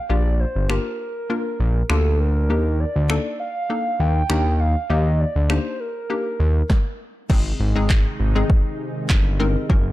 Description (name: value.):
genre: dance-pop.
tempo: 100 BPM.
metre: 4/4.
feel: straight.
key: unclear.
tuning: A4 = 440 Hz.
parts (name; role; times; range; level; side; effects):
hollow clarinet-like synth lead; melody; 0.0-7.0 s; A4 to G5; -26 LUFS; right 1 dB; chorus, tape echo.
hollow square pluck; accompaniment; 0.1-9.9 s; Ab3 to Bb4; -27 LUFS; left 4 dB; chorus, sidechain pumping.
fat analog bass; bass; 0.1-9.9 s; Gb1 to Eb2; -19 LUFS; equal; sidechain pumping.
punchy analog drum machine; drums; 0.7-9.8 s; crash cymbal, finger snaps, handclaps, kick drum, snare drum; -20 LUFS; equal; none.
filtered supersaw swell; sustained chords; 7.3-9.9 s; C3 to Gb4; -30 LUFS; equal; sidechain pumping.
room: light reverb.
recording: dark, warm production.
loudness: -18 LUFS.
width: side -16 dB against mid.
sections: 0.0-7.3 A section; 7.3-9.9 B section.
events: stop 6.7-7.3.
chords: 0.0 Bb6; 2.5 Ebmaj7; 7.3 Ab.